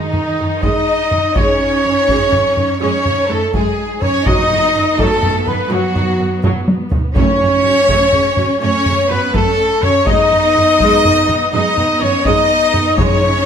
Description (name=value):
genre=cinematic, epic orchestral film score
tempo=83 BPM (dotted quarters)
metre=12/8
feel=straight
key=unclear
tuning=A4 = 441 Hz
part: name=rich symphonic violin section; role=melody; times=0.0-13.5 s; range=D#4 to D#5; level=-24 LUFS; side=left 3 dB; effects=none
part: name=mellow hollow silver concert flute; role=second line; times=0.0-13.5 s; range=D#5 to D#6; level=-22 LUFS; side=left 1 dB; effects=none
part: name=warm symphonic violin section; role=second line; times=0.0-13.5 s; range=D#4 to D#5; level=-23 LUFS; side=left 4 dB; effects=none
part: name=warm symphonic viola section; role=accompaniment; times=0.0-13.5 s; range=C#3 to D#4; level=-22 LUFS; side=right 1 dB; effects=none
part: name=mellow French horn section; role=sustained chords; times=0.0-13.5 s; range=D#4 to D#5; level=-18 LUFS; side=left 4 dB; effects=none
part: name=clear trumpet section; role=stabs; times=0.0-13.5 s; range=D#4 to D#5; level=-20 LUFS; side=right 2 dB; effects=none
part: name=rich symphonic cello section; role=bass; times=0.0-13.5 s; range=D#3 to D#4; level=-20 LUFS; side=right 3 dB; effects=none
part: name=warm studio double bass section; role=bass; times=0.1-13.3 s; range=F#2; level=-23 LUFS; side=right 4 dB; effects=none
part: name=solo taiko drums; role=drums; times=0.1-13.4 s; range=none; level=-20 LUFS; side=equal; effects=none
part: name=timpani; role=percussion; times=4.3-7.8, 13.0-13.5 s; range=F#2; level=-22 LUFS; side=left 1 dB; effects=none
room=moderate recital hall reverb, RT60 1.4 s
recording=none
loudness=-12 LUFS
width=side -8 dB against mid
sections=0.0-13.5 A section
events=drum fill 6.4-7.2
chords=0.0 G#5/F#; 1.4 C#sus2/F#; 4.3 B/F#; 7.2 F#m; 10.1 G#m/F#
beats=0.63 | 1.36 2.09 2.81 3.54 | 4.27 4.99 5.72 6.44 | 7.17 7.89 8.62 9.34 | 10.07 10.79 11.53 12.25 | 12.98